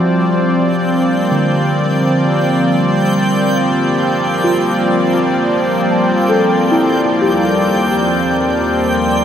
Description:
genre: ambient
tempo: 65 BPM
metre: 4/4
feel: straight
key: unclear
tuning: A4 = 440 Hz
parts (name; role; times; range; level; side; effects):
- warm analog pad; sustained chords; 0.0-9.2 s; Eb2 to D5; -14 LUFS; equal; chorus
- muted felt-like synth keys; arpeggios; 0.0-9.2 s; D3 to A5; -18 LUFS; left 1 dB; chorus, tape echo
- pedal harmonium; drone; 0.0-9.2 s; F3 to C4; -22 LUFS; equal; none
- backwards swelling texture; texture; 0.7-9.2 s; G5; -23 LUFS; right 1 dB; built-in reverb
room: wet lush hall reverb, RT60 2.9 s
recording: none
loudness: -12 LUFS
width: side -9 dB against mid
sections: 0.0-9.2 A section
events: none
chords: 0.0 Gmadd9; 7.2 Eb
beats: 0.70 1.64 2.57 | 3.50 4.43 5.36 6.28 | 7.20 8.12 9.05

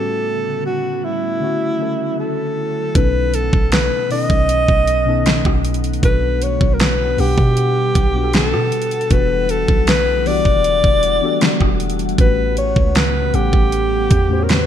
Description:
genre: contemporary R&B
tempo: 78 BPM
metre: 4/4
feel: straight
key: unclear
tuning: A4 = 441 Hz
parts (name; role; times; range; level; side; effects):
- breathy alto saxophone; melody; 0.0-14.7 s; E4 to D#5; -19 LUFS; left 1 dB; ping-pong delay
- muted felt-like synth keys; accompaniment; 0.0-14.7 s; A2 to F#5; -24 LUFS; left 5 dB; chorus
- glassy FM pad; sustained chords; 0.0-14.7 s; C#3 to F#5; -26 LUFS; equal; ensemble chorus, built-in reverb
- warm 808-style bass; bass; 3.0-14.7 s; E1 to B2; -20 LUFS; right 1 dB; none
- pop drum kit; drums; 3.0-14.7 s; hi-hat, kick drum, rim click, snare drum; -17 LUFS; right 1 dB; overdrive, gated reverb
room: light reverb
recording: bright 1980s-style digital production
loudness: -14 LUFS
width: side -10 dB against mid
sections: 0.0-3.0 A section; 3.0-14.7 B section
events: break 0.0-3.0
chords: 0.0 A13; 1.4 Dmaj9; 3.0 B7; 6.0 Gmaj7/B; 9.1 Em11; 12.2 A13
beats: 0.65 1.41 2.18 | 2.95 3.72 4.49 5.26 | 6.03 6.80 7.57 8.34 | 9.11 9.88 10.64 11.41 | 12.18 12.95 13.72 14.49

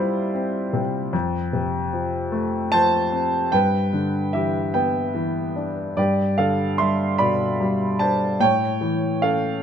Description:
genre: classical, lyrical solo piano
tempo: 50 BPM (dotted quarters)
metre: 6/8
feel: rubato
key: unclear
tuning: A4 = 439 Hz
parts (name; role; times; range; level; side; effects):
- warm grand piano; solo; 0.0-9.6 s; F2 to C6; -20 LUFS; equal; none
room: light reverb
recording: close, detailed microphones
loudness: -19 LUFS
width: side -8 dB against mid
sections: 0.0-9.6 A section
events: none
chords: 0.0 C; 1.1 F; 3.5 G6; 6.0 G; 8.4 A7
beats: | 1.14 2.33 | 3.53 4.75 | 5.98 7.20 | 8.41 9.62

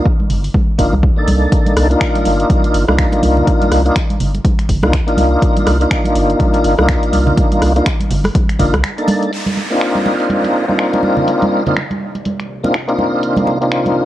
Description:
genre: deep house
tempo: 123 BPM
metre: 4/4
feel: swing 59% on 16ths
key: C minor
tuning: A4 = 441 Hz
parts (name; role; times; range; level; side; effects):
- tonewheel organ; stabs; 0.0-14.1 s; Bb3 to A4; -15 LUFS; equal; overdrive, chorus vibrato, slow rotary speaker, vintage 12-bit sampler grit, sidechain pumping, analog delay
- electronic kick drum; drums; 0.1-8.7 s; none; -15 LUFS; equal; studio reverb
- congas; percussion; 0.2-13.9 s; none; -20 LUFS; right 2 dB; none
- round analog bass; bass; 0.3-8.8 s; G1 to C2; -16 LUFS; equal; sidechain pumping
- deep house drum kit; drums; 0.3-13.9 s; crash cymbal, finger snaps, hi-hat, rim click; -22 LUFS; equal; low-pass filter on hats, studio reverb, low-pass filter on snare, low-pass filter on cymbals
- dark analog pad; sustained chords; 10.3-14.1 s; C3 to D5; -29 LUFS; equal; chorus, sidechain pumping
- downlifter; sound effects; 9.3-13.2 s; none; -27 LUFS; right 1 dB; none
room: light reverb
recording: cassette tape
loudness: -12 LUFS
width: side -14 dB against mid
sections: 0.0-9.3 A section; 9.3-14.1 B section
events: break 8.8-9.3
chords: 0.0 Cm11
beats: 0.06 0.55 1.03 | 1.52 2.01 2.50 2.98 | 3.47 3.96 4.45 4.94 | 5.42 5.91 6.40 6.89 | 7.38 7.86 8.35 8.84 | 9.33 9.81 10.30 10.79 | 11.28 11.77 12.25 12.74 | 13.23 13.72

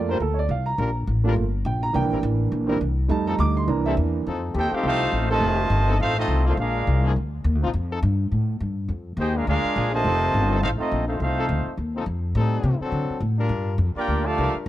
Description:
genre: jazz, big band swing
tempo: 208 BPM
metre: 4/4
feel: swing 60% on 8ths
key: F major from 4.3 s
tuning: A4 = 439 Hz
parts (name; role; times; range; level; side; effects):
- clear baby grand piano; accompaniment; 0.0-4.2 s; E3 to D6; -24 LUFS; right 5 dB; none
- upright bass; bass; 0.0-14.7 s; F1 to D3; -23 LUFS; left 1 dB; none
- bright trombone section; sustained chords; 0.1-14.7 s; F3 to C5; -30 LUFS; left 4 dB; none
- bright trombone section; second line; 4.5-7.1, 9.2-11.7, 14.0-14.5 s; C3 to G4; -28 LUFS; right 2 dB; none
- warm trumpet section; melody; 4.6-7.1, 9.2-11.7, 14.0-14.6 s; C4 to A5; -25 LUFS; right 1 dB; none
room: studio reverb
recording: dry, close 1970s-style studio recording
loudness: -20 LUFS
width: side -14 dB against mid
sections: 0.0-4.3 A section; 4.3-14.7 B section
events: grand piano solo 0.0-4.3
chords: 0.0 Gm7; 1.9 C7; 3.1 F7; 3.7 C7; 4.3 F7; 6.6 Bb7; 7.7 F; 8.9 Bb7; 10.0 F7; 12.3 Am7b5; 12.9 D7; 13.5 Gm7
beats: 0.20 0.49 | 0.78 1.07 1.36 1.65 | 1.94 2.23 2.52 2.81 | 3.10 3.39 3.68 3.97 | 4.26 4.54 4.83 5.12 | 5.41 5.70 5.99 6.28 | 6.57 6.86 7.15 7.43 | 7.72 8.01 8.30 8.59 | 8.88 9.17 9.46 9.75 | 10.04 10.32 10.61 10.90 | 11.19 11.48 11.77 12.06 | 12.35 12.64 12.93 13.21 | 13.51 13.79 14.08 14.37 | 14.66

